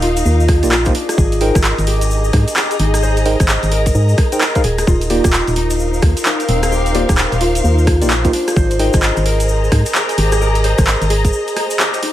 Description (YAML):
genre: UK garage, two-step garage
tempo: 130 BPM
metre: 4/4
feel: swing 62% on 16ths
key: unclear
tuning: A4 = 439 Hz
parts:
  - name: Celtic harp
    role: melody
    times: 0.0-12.1 s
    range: C4 to Eb5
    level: -21 LUFS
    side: equal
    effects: dub echo
  - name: ethereal airy pad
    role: sustained chords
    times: 0.0-12.1 s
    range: C5 to Eb5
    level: -27 LUFS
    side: left 1 dB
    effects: ensemble chorus, built-in reverb, sidechain pumping
  - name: organ-like FM bass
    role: bass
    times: 0.0-11.3 s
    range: Eb1 to Ab2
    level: -16 LUFS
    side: equal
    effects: none
  - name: punchy analog drum machine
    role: drums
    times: 0.0-12.1 s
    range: handclaps, hi-hat, rim click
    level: -19 LUFS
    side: equal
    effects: overdrive
  - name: muted studio string section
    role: texture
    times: 0.0-12.1 s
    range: Eb4 to Bb5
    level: -23 LUFS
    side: left 1 dB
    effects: sidechain pumping
  - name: tube shaker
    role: percussion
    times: 0.2-12.0 s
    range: none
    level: -29 LUFS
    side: left 3 dB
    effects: none
  - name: electronic kick drum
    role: drums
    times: 0.5-11.3 s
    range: none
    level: -15 LUFS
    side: equal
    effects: none
  - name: tine electric piano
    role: stabs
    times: 0.6-8.9 s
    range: Bb3 to G5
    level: -20 LUFS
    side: equal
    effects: medium stereo tremolo
room: light reverb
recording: vinyl crackle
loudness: -12 LUFS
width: side -13 dB against mid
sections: 0.0-12.1 A section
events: break 11.3-12.1; band accent 11.8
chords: 0.0 Ebadd9; 0.9 Abmaj9; 4.9 Ebadd9; 8.3 Abmaj9